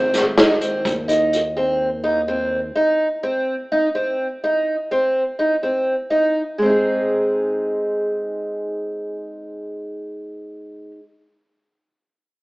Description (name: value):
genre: progressive instrumental, band music in an uneven meter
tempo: 251 BPM (eighths)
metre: 7/8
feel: straight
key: Ab major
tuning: A4 = 441 Hz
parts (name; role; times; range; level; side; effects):
- picked twelve-string acoustic guitar; arpeggios; 0.0-11.0 s; Ab3 to Ab4; -19 LUFS; equal; none
- fat analog bass; bass; 0.0-2.7 s; Ab1 to Eb2; -28 LUFS; equal; none
- vintage drum kit; drums; 0.1-1.4 s; hi-hat, kick drum, snare drum; -18 LUFS; equal; none
room: wet stone room reverb, RT60 1.3 s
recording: rough rehearsal-room recording, AM radio sound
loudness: -18 LUFS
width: side -21 dB against mid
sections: 0.0-6.6 A section; 6.6-9.9 B section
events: none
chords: 0.0 Ab